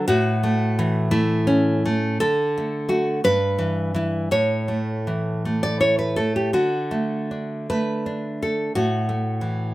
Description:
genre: romantic piece for solo classical guitar.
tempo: 56 BPM (dotted quarters).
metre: 6/8.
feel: uneven beats, rubato.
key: unclear.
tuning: A4 = 441 Hz.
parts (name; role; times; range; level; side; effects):
nylon-string guitar; solo; 0.0-9.7 s; G2 to D5; -20 LUFS; equal; none.
room: moderate studio reverb, RT60 0.5 s.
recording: none.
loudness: -20 LUFS.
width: side -17 dB against mid.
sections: 0.0-9.7 A section.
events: none.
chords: 0.1 A; 2.2 D; 3.2 Em/G; 4.3 A; 6.6 D; 8.7 A5.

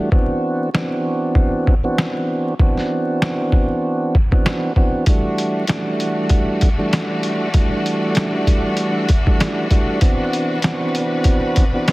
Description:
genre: hip hop, boom-bap hip-hop.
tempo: 97 BPM.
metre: 4/4.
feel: swing 57% on 16ths.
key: unclear.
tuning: A4 = 439 Hz.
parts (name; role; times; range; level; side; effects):
tonewheel organ; accompaniment; 0.0-11.9 s; E3 to F#4; -19 LUFS; right 1 dB; slow rotary speaker, high-pass filter, low-pass filter.
trip hop sampler-style drum kit; drums; 0.1-11.9 s; hi-hat, kick drum, snare drum; -17 LUFS; equal; none.
clear studio string section; sustained chords; 5.1-11.9 s; C3 to B4; -26 LUFS; left 2 dB; high-pass filter, low-pass filter.
room: little or no reverb.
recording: heavily compressed radio sound, multiband compression, vinyl crackle.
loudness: -16 LUFS.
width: side -20 dB against mid.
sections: 0.0-11.9 A section.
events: break 0.0-5.1.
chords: 0.1 D13; 5.1 Em11; 10.0 D13.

